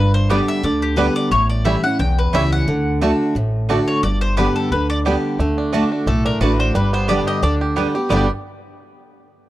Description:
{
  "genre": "bluegrass",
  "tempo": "177 BPM",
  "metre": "4/4",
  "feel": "swing 54% on 8ths",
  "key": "G major",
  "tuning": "A4 = 440 Hz",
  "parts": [
    { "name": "mandolin", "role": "melody", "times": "0.0-8.3 s", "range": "G4 to G5", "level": "-22 LUFS", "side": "left 2 dB", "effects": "none" },
    { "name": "picked steel-string acoustic guitar", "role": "accompaniment", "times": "0.0-8.3 s", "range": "E2 to G4", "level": "-19 LUFS", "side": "equal", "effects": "none" },
    { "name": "upright bass", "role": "bass", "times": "0.0-8.3 s", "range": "G1 to D2", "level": "-20 LUFS", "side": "equal", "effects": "none" },
    { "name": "bluegrass banjo", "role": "melody", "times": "0.3-8.3 s", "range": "G3 to G4", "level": "-25 LUFS", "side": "right 4 dB", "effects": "none" },
    { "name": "mandolin", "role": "stabs", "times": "0.3-8.3 s", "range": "A3 to A5", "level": "-26 LUFS", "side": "right 7 dB", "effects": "none" }
  ],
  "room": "studio reverb",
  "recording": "dry, close 1970s-style studio recording",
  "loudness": "-16 LUFS",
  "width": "side -15 dB against mid",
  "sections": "0.0-5.4 A section; 5.4-8.1 B section; 8.1-9.5 C section",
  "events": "none",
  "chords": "0.0 G; 1.3 A7; 2.7 D; 4.0 G; 5.4 D; 6.7 G"
}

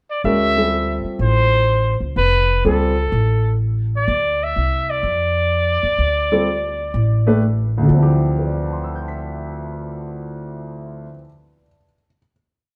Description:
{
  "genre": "modal jazz",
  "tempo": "126 BPM",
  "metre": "4/4",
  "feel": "swing 67% on 8ths",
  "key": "D dorian",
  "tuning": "A4 = 440 Hz",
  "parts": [
    { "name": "clear trumpet", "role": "melody", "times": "0.1-7.4 s", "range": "A4 to E5", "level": "-22 LUFS", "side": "equal", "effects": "none" },
    { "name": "warm grand piano", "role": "accompaniment", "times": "0.2-2.9, 6.3-12.3 s", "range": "D2 to B6", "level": "-22 LUFS", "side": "equal", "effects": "none" },
    { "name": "upright bass", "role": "bass", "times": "0.2-11.1 s", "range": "F1 to F2", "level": "-23 LUFS", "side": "equal", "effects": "none" }
  ],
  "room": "moderate stone room reverb, RT60 1.2 s",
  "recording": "band playing live in one room",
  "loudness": "-18 LUFS",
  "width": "mono",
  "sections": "0.0-0.3 pickup bar; 0.3-7.9 A section; 7.9-11.7 final chord",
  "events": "none",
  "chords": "0.3 Dm11"
}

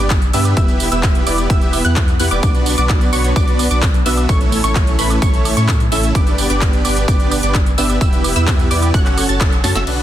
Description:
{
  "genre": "EDM, festival progressive house",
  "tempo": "129 BPM",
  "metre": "4/4",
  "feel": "straight",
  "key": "B minor",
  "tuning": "A4 = 440 Hz",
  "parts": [
    { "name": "wide unison pluck", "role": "arpeggios", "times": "0.0-9.8 s", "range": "B5 to A6", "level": "-24 LUFS", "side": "equal", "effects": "sidechain pumping, digital delay" },
    { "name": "dense compressed supersaw", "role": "riff", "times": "0.0-10.0 s", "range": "A3 to A5", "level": "-18 LUFS", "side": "right 1 dB", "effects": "vintage 12-bit sampler grit, sidechain pumping, low-pass filter, digital delay" },
    { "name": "saturated sub bass", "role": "bass", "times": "0.0-10.0 s", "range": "E1 to A2", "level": "-19 LUFS", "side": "equal", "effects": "tube saturation, sidechain pumping" },
    { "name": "big-room dance drum kit", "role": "drums", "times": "0.1-10.0 s", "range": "crash cymbal, handclaps, hi-hat, snare drum, tambourine, woodblock", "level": "-22 LUFS", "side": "right 1 dB", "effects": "none" },
    { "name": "electronic kick drum", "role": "drums", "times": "0.1-9.5 s", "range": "none", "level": "-15 LUFS", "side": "equal", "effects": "none" }
  ],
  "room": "little or no reverb",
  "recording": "dense, heavily limited modern master",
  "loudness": "-12 LUFS",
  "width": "side -12 dB against mid",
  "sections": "0.0-9.9 A section",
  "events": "drop 0.0-9.9; band accent 9.4; drum fill 9.6",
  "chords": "0.0 G; 0.6 Em; 2.4 Bm; 4.3 A; 6.2 G; 8.0 Em; 8.9 F#m"
}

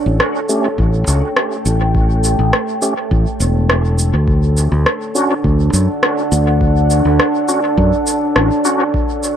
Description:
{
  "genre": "ambient dub",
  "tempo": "103 BPM",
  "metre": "4/4",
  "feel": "straight",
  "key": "unclear",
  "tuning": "A4 = 440 Hz",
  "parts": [
    { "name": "deep dark ambient pad", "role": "sustained chords", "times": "0.0-9.4 s", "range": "A3 to G5", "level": "-18 LUFS", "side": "right 1 dB", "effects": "chorus, built-in reverb" },
    { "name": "fingered electric bass", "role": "bass", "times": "0.1-8.5 s", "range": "E1 to F#2", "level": "-14 LUFS", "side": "equal", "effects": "none" },
    { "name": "electronic rim click and cabasa", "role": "drums", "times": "0.2-9.4 s", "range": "none", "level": "-18 LUFS", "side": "equal", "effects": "overdrive, dub echo" },
    { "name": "bright tonewheel organ", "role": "stabs", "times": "0.5-8.8 s", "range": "A3 to G4", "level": "-21 LUFS", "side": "equal", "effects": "overdrive, chorus vibrato, fast rotary speaker, low-pass filter, dub echo" },
    { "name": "electronic kick drum", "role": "drums", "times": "0.8-9.1 s", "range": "none", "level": "-19 LUFS", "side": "equal", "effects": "none" }
  ],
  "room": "light reverb, digital ambience",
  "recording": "echo-heavy mix",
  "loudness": "-12 LUFS",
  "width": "side -9 dB against mid",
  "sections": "0.0-9.4 A section",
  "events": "none",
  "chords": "0.0 A7; 4.3 Dmaj7"
}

